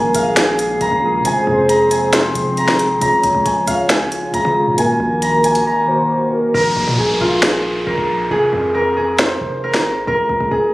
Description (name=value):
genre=hip hop, trap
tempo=136 BPM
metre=4/4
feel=half-time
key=unclear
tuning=A4 = 445 Hz
part: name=concert harp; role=melody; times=0.0-10.7 s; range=F4 to C6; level=-16 LUFS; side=equal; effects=digital delay
part: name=warm velvety synth lead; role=second line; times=0.0-6.5 s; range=Bb4 to Db5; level=-22 LUFS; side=equal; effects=chorus, digital delay
part: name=mellow tine electric piano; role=accompaniment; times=0.0-6.6 s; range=C3 to Bb4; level=-22 LUFS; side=right 1 dB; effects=phaser
part: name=glassy FM pad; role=sustained chords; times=0.0-6.5 s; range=Db3 to Ab4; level=-22 LUFS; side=left 1 dB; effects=ensemble chorus, built-in reverb
part: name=distorted 808-style bass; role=bass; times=0.0-10.7 s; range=Eb1 to Db3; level=-24 LUFS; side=equal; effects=distortion
part: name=trap drum kit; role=drums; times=0.1-9.8 s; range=hi-hat, snare drum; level=-17 LUFS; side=equal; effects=overdrive
part: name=downlifter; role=sound effects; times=6.5-10.1 s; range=none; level=-25 LUFS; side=equal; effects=none
room=light reverb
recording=recorded on a phone in the room, studio reverb, compression, faint mains hum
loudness=-13 LUFS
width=side -18 dB against mid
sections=0.0-6.5 A section; 6.5-10.7 B section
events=drums muted 5.7-6.5; hi-hats muted 6.5-10.7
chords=0.0 Bbm7; 1.2 Fm; 3.0 Db; 4.8 Ebm; 6.5 Fmadd11/Bb; 8.3 Fm; 10.1 Db5